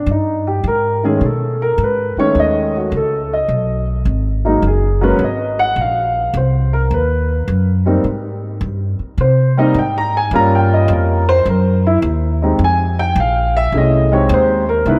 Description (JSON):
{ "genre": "jazz piano trio", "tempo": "106 BPM", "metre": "4/4", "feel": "swing 68% on 8ths", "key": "unclear", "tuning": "A4 = 440 Hz", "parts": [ { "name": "warm concert grand piano", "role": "melody", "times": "0.0-15.0 s", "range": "Eb3 to Bb5", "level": "-18 LUFS", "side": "equal", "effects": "analog chorus" }, { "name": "upright bass", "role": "bass", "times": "0.0-15.0 s", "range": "Gb1 to C3", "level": "-19 LUFS", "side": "equal", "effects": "none" } ], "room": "moderate church reverb, RT60 3.1 s", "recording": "dreamy mix soaked in reverb", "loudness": "-16 LUFS", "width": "mono", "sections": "0.0-15.0 A section", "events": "grand piano solo 0.0-15.0", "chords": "0.0 Absus2; 1.2 B13; 3.5 Gbsus2; 5.8 Bbsus2; 6.9 N.C.; 8.1 Abmaj7; 10.3 Gm7b5; 11.5 N.C.; 12.6 Fm9" }